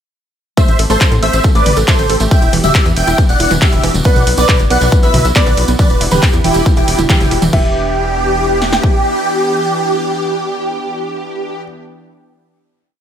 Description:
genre	uplifting trance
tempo	138 BPM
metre	4/4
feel	straight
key	E minor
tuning	A4 = 440 Hz
part	supersaw chords	melody	0.6-11.6 s	E4 to G5	-17 LUFS	equal	ensemble chorus, sidechain pumping, digital delay
part	plucky unison lead	second line	0.6-11.6 s	G5 to G6	-22 LUFS	right 2 dB	lush chorus, sidechain pumping, tape echo
part	supersaw pad	sustained chords	0.6-11.6 s	E3 to G4	-24 LUFS	equal	sidechain pumping
part	wide unison pluck	arpeggios	0.6-7.7 s	B2 to A4	-20 LUFS	right 4 dB	sidechain pumping, tape echo
part	big-room dance drum kit	drums	0.6-8.9 s	kick drum, snare drum	-12 LUFS	equal	none
part	punchy analog drum machine	drums	0.6-7.6 s	crash cymbal, handclaps, hi-hat, ride cymbal, toms	-18 LUFS	left 1 dB	none
part	tambourine	percussion	0.6-7.5 s	none	-27 LUFS	right 3 dB	none
part	tight sequencer bass	bass	0.7-8.8 s	E1 to A2	-17 LUFS	equal	tube saturation, sidechain pumping
part	dark grand piano	second line	4.1-11.6 s	B4 to E5	-22 LUFS	equal	dub echo
room	light reverb, digital ambience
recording	none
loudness	-10 LUFS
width	side -9 dB against mid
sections	0.6-7.5 drop; 7.5-11.0 final chord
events	drop 0.6-7.5; band accent 7.1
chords	0.6 Am7; 2.3 Em7; 4.1 Bsus4; 5.8 Em7

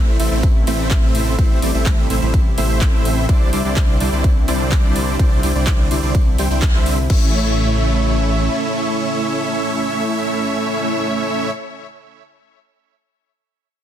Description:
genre	EDM, festival progressive house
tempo	126 BPM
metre	4/4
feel	straight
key	A minor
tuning	A4 = 440 Hz
part	lush unison pad	sustained chords	0.0-11.5 s	C3 to E4	-27 LUFS	equal	chorus, sidechain pumping
part	dense compressed supersaw	riff	0.0-11.5 s	G3 to G5	-20 LUFS	right 1 dB	sidechain pumping, ping-pong delay
part	wide detuned saw bass	bass	0.0-8.5 s	A1 to C2	-20 LUFS	equal	chorus, sidechain pumping
part	big-room dance drum kit	drums	0.2-7.2 s	crash cymbal, handclaps, hi-hat, ride cymbal	-27 LUFS	equal	none
part	electronic kick drum	drums	0.4-7.2 s	none	-15 LUFS	equal	none
room	digital ambience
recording	dense, heavily limited modern master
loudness	-15 LUFS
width	side -10 dB against mid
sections	0.0-7.1 A section; 7.1-10.9 B section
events	drop 0.0-7.1; band accent 6.6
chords	0.0 Am; 3.3 Cadd9; 7.1 A

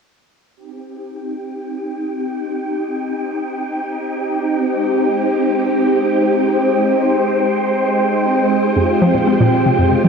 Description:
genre	ambient, sequencer-driven space music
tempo	free time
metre	none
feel	none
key	unclear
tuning	A4 = 441 Hz
part	phased string machine	sustained chords	0.6-10.1 s	Ab3 to C5	-16 LUFS	equal	ensemble chorus, phaser, shimmer reverb
part	wind-like tuned noise texture	texture	1.4-10.1 s	G5	-24 LUFS	right 1 dB	built-in reverb, shimmer reverb
part	hollow square pluck	riff	8.8-10.1 s	F2 to C4	-15 LUFS	left 1 dB	chorus, ping-pong delay
room	wet huge ambient reverb, RT60 7.1 s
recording	worn, warbling old tape, cassette tape, warbly pitch drift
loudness	-15 LUFS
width	side -5 dB against mid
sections	0.6-10.1 A section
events	filter sweep on string machine 0.6-10.1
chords	0.6 Cm; 4.7 Abmaj7; 8.8 Fmadd9

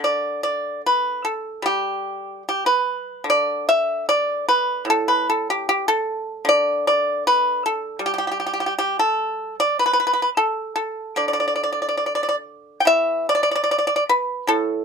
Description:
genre	chinese traditional, Chinese solo plucked strings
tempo	75 BPM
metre	4/4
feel	uneven beats, rubato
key	D zhi mode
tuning	A4 = 440 Hz
part	pipa	solo	0.0-14.8 s	A2 to G5	-19 LUFS	equal	none
room	light reverb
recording	close, detailed microphones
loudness	-19 LUFS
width	side -6 dB against mid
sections	0.0-12.9 A section; 12.9-14.8 B section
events	none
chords	none

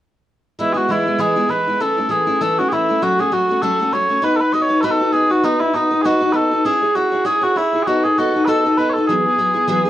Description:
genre	celtic folk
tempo	198 BPM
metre	4/4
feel	swing 55% on 8ths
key	E major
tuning	A4 = 442 Hz
part	mellow small bagpipes	melody	0.6-9.9 s	D#4 to D#5	-16 LUFS	equal	none
part	picked steel-string acoustic guitar	accompaniment	0.6-9.9 s	E3 to C#5	-19 LUFS	equal	none
room	moderate small room reverb, RT60 0.6 s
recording	worn, warbling old tape, cassette tape, warbly pitch drift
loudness	-15 LUFS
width	side -13 dB against mid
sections	0.6-9.9 A section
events	none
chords	0.6 E; 1.8 A/E; 3.0 F#m; 4.2 B; 6.6 C#m; 7.9 B7; 9.1 Eadd9

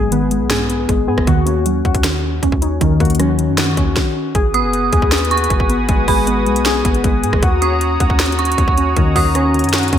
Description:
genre	hip hop, trap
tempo	156 BPM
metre	4/4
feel	half-time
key	G# minor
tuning	A4 = 440 Hz
part	warbly dusty pluck	accompaniment	0.0-4.3 s	G#2 to D#4	-21 LUFS	right 5 dB	chorus
part	warbly lo-fi synth keys	arpeggios	0.0-10.0 s	D#3 to G#4	-18 LUFS	left 4 dB	chorus, digital delay
part	long sustained 808-style bass	bass	0.0-10.0 s	F#1 to G#2	-20 LUFS	equal	none
part	trap drum kit	drums	0.1-10.0 s	hi-hat, kick drum, rim click, snare drum	-17 LUFS	equal	gated reverb
part	warm analog pad	sustained chords	4.3-10.0 s	F#4 to D#6	-22 LUFS	right 2 dB	chorus
part	dark detuned synth bell	second line	4.5-9.7 s	B5 to D#6	-20 LUFS	right 4 dB	chorus, digital delay
room	light reverb, digital ambience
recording	bright 1980s-style digital production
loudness	-13 LUFS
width	side -10 dB against mid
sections	0.0-4.3 A section; 4.3-10.0 B section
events	stop 4.0-4.3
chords	0.0 G#m7; 1.3 D#m7; 4.3 G#m7; 7.4 D#m7

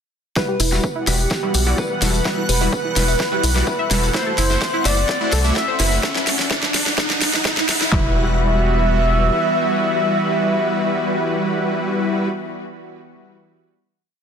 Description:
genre	progressive house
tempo	127 BPM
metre	4/4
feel	straight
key	E minor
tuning	A4 = 439 Hz
part	expressive synth lead	melody	0.4-12.3 s	G4 to E5	-23 LUFS	equal	lush chorus, sidechain pumping, ping-pong delay
part	soft synth bell	second line	0.4-12.3 s	G4 to E5	-33 LUFS	equal	none
part	supersaw pad	sustained chords	0.4-12.3 s	E3 to F#5	-27 LUFS	right 1 dB	sidechain pumping
part	analog pluck	arpeggios	0.4-8.1 s	E4 to E5	-28 LUFS	equal	chorus, sidechain pumping, ping-pong delay
part	supersaw stab	stabs	0.4-12.3 s	G3 to E5	-24 LUFS	left 1 dB	sidechain pumping, low-pass filter, ping-pong delay
part	deep house drum kit	drums	0.4-8.0 s	handclaps, kick drum, toms	-24 LUFS	equal	overdrive, high-pass filter on kick, high-pass filter on snare, high-pass filter on toms
part	deep house drum kit	drums	0.4-7.9 s	hi-hat, snare drum	-22 LUFS	equal	overdrive, high-pass filter on snare, sidechain pumping on hats, high-pass filter on hats
part	tambourine	percussion	0.4-6.0 s	none	-27 LUFS	left 4 dB	none
part	riser	sound effects	2.8-7.9 s	none	-26 LUFS	right 2 dB	none
part	backwards swelling texture	texture	1.6-7.9 s	F#5 to F#6	-32 LUFS	right 2 dB	built-in reverb, sidechain pumping
part	round analog bass	bass	0.6-9.3 s	E1 to C2	-19 LUFS	equal	sidechain pumping
room	light reverb, digital ambience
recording	dense, heavily limited modern master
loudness	-16 LUFS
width	side -7 dB against mid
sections	0.4-7.9 build; 7.9-11.7 final chord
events	build-up 0.4-7.9; drum fill 0.4-7.9; filter sweep on synth pluck 0.4-6.0; filter sweep on supersaw synth 0.4-6.0; riser 2.8-7.9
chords	0.4 Emadd9; 4.1 F#m7b5; 6.0 N.C.; 7.9 Emadd9

